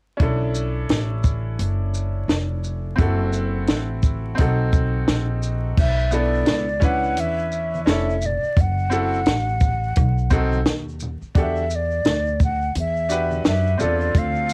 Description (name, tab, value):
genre	hip hop, jazz-hop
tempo	86 BPM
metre	4/4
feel	swing 59% on 16ths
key	B minor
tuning	A4 = 441 Hz
part	bright upright piano	accompaniment	0.2-14.5 s	B3 to B4	-29 LUFS	equal	plate reverb
part	upright bass	bass	0.2-14.5 s	E#1 to F#2	-26 LUFS	equal	transformer saturation
part	compact cocktail drum kit	drums	0.2-14.5 s	crash cymbal, hi-hat, kick drum, shaker, snare drum	-23 LUFS	equal	cassette tape
part	breathy mellow silver concert flute	melody	5.8-14.5 s	D5 to F#5	-26 LUFS	equal	cassette tape, plate reverb
part	tube shaker and congas	percussion	5.8-14.5 s	none	-39 LUFS	equal	none
room	light reverb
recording	home recording on cassette, vinyl crackle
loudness	-21 LUFS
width	mono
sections	0.2-5.8 A section; 5.8-14.5 B section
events	none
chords	0.2 Bm11; 3.0 F#m7b5; 4.4 B7b9; 5.8 Bm11; 8.6 F#m7b5; 10.0 B7b9; 11.4 Em11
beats	| 0.20 0.90 1.59 2.29 | 2.99 3.69 4.38 5.08 | 5.78 6.48 7.17 7.87 | 8.57 9.27 9.96 10.66 | 11.36 12.06 12.76 13.45 | 14.15